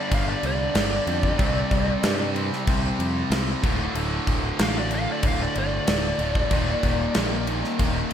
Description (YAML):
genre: hard rock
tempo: 94 BPM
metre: 4/4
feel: straight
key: unclear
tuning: A4 = 440 Hz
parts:
  - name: biting lead guitar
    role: melody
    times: 0.0-7.5 s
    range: D5 to F5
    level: -29 LUFS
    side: equal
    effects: overdrive, slapback echo, tape echo
  - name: biting overdriven guitar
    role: riff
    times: 0.0-8.1 s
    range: D2 to C4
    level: -31 LUFS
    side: equal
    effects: slapback echo
  - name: cranked stack guitar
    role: riff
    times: 0.0-8.1 s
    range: D2 to C4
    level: -32 LUFS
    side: left 8 dB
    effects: overdrive, slapback echo
  - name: overdriven electric guitar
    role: riff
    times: 0.0-8.1 s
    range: D2 to C4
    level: -31 LUFS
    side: right 10 dB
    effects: slapback echo
  - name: modern bright picked electric bass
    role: bass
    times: 0.1-8.0 s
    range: D1 to G2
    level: -28 LUFS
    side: equal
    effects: none
  - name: gated 80s drum kit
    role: drums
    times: 0.1-8.1 s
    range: crash cymbal, kick drum, snare drum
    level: -25 LUFS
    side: equal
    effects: none
room: light reverb, small room reverb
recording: none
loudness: -21 LUFS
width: side -9 dB against mid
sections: 0.0-8.1 A section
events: lead electric guitar solo 0.0-8.1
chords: 0.0 G5; 1.4 C5; 3.6 D5; 6.5 Eb5